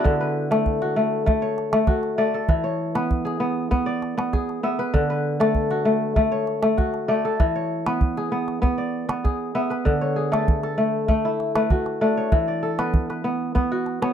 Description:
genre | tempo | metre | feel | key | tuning
west african traditional, West African string and xylophone music | 98 BPM | 4/4 | straight | D lydian | A4 = 440 Hz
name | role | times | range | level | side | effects
kora | arpeggios | 0.0-14.1 s | D3 to E5 | -21 LUFS | left 1 dB | none
calabash | percussion | 0.1-14.1 s | none | -22 LUFS | right 1 dB | none
room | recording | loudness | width
light reverb | dry, close 1970s-style studio recording | -20 LUFS | side -8 dB against mid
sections
0.0-9.9 A section; 9.9-14.1 B section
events
none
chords
0.0 D; 2.5 E; 4.9 D; 7.4 E; 9.9 D; 12.3 E5

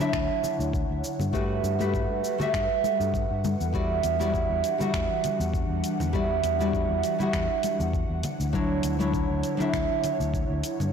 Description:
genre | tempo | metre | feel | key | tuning
sunset chillout | 100 BPM | 4/4 | swing 54% on 16ths | unclear | A4 = 439 Hz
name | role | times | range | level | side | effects
nylon-string guitar | accompaniment | 0.0-10.9 s | F#3 to F#5 | -27 LUFS | moving between left 1 dB and right 6 dB | auto-pan, ping-pong delay
airy breathy pad | sustained chords | 0.0-10.9 s | D3 to F#5 | -33 LUFS | left 1 dB | chorus
smooth R&B drum kit | drums | 0.0-10.9 s | finger snaps, hi-hat, shaker | -38 LUFS | left 2 dB | soft clipping on snare
congas | percussion | 0.0-10.9 s | none | -34 LUFS | left 3 dB | none
fingered electric bass | bass | 0.1-10.9 s | D2 to G2 | -29 LUFS | left 1 dB | transformer saturation
electronic kick drum | drums | 0.1-10.5 s | none | -31 LUFS | left 1 dB | none
room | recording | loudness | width
moderate scoring stage reverb, RT60 1.7 s | blown-out, overdriven recording, overdrive | -24 LUFS | side -7 dB against mid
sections
0.0-10.9 A section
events
none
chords
0.0 Dmaj9; 1.3 Gmaj9; 3.7 Em9; 8.2 Dmaj9

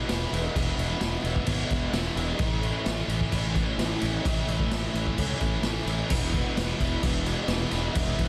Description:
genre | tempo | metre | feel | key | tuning
rock, shoegaze and dream pop | 130 BPM | 4/4 | straight | E major | A4 = 439 Hz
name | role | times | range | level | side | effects
biting overdriven guitar | riff | 0.0-8.3 s | E2 to E4 | -32 LUFS | equal | lush chorus
fuzz fingered electric bass | bass | 0.1-8.3 s | E1 to C#2 | -33 LUFS | equal | overdrive
raw garage drum kit | drums | 0.1-8.3 s | crash cymbal, kick drum, snare drum | -31 LUFS | equal | none
room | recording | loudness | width
small room reverb | dense, heavily limited modern master, lossy compression artefacts | -27 LUFS | mono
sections
0.0-6.1 A section; 6.1-8.3 B section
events
none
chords
0.0 E; 2.4 A; 6.1 E

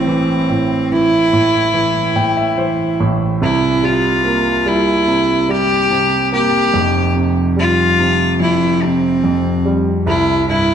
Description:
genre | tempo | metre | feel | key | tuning
pop | 72 BPM | 4/4 | straight | C major | A4 = 444 Hz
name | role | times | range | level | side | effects
rich cello | melody | 0.0-10.7 s | C4 to G4 | -16 LUFS | left 1 dB | none
warm grand piano | accompaniment | 0.0-10.7 s | F1 to G5 | -16 LUFS | right 1 dB | none
room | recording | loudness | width
wet recital hall reverb, RT60 1.6 s | nothing above 10.9 kHz | -13 LUFS | side -8 dB against mid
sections
0.0-10.7 A section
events
grand piano fill 1.7-3.4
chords
0.0 Am; 3.4 C7; 6.7 Fsus2; 10.1 C

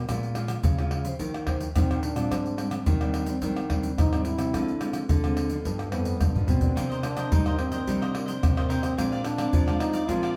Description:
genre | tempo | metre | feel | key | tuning
samba and choro | 108 BPM | 4/4 | straight | unclear | A4 = 440 Hz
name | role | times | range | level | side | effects
nylon-string guitar | accompaniment | 0.0-10.4 s | G2 to C5 | -35 LUFS | equal | none
nylon-string guitar | bass | 0.0-10.4 s | F2 to G3 | -33 LUFS | equal | none
egg shaker, surdo, pandeiro and tamborim | percussion | 0.1-10.4 s | none | -29 LUFS | equal | none
mellow trombone | melody | 1.8-10.4 s | B3 to F4 | -32 LUFS | equal | none
cavaquinho | accompaniment | 6.8-10.3 s | Eb4 to F5 | -39 LUFS | equal | none
room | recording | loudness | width
wet studio reverb, RT60 0.9 s | heard from further back in the room | -26 LUFS | mono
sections
0.0-10.4 A section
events
trombone solo 0.0-10.4; drum fill 6.2-6.8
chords
0.1 Bbm7; 1.2 Eb6; 2.3 Abmaj7#11; 4.5 Dm7b5; 5.7 G7b13; 6.8 Cm9; 9.0 Bb9

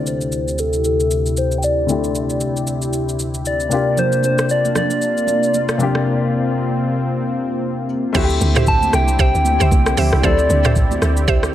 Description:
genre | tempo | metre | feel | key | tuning
amapiano | 115 BPM | 4/4 | swing 58% on 16ths | D minor | A4 = 438 Hz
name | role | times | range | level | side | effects
soft struck synth lead | melody | 0.0-11.5 s | A4 to A5 | -20 LUFS | left 1 dB | chorus, low-pass filter, digital delay
warm baby grand piano | accompaniment | 0.0-11.5 s | C3 to A4 | -24 LUFS | left 4 dB | low-pass filter
warm analog pad | sustained chords | 0.0-11.5 s | D2 to G4 | -21 LUFS | equal | chorus, sidechain pumping, low-pass filter
smooth R&B drum kit | drums | 0.1-11.5 s | crash cymbal, hi-hat, kick drum, rim click, shaker, toms | -20 LUFS | equal | none
congas | percussion | 4.0-11.2 s | none | -28 LUFS | right 8 dB | none
mallet-like synth pluck | stabs | 8.1-11.4 s | G4 to E5 | -23 LUFS | right 5 dB | chorus, digital delay
woody log drum bass | bass | 8.2-11.5 s | C2 to D2 | -18 LUFS | equal | none
room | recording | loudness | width
light reverb, digital ambience | none | -15 LUFS | side -12 dB against mid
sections
0.0-8.1 A section; 8.1-11.5 B section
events
filter sweep 0.0-8.1; break 6.1-8.1; drop 8.1-11.5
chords
0.0 D9sus4; 3.7 C9sus4; 8.1 D9sus4

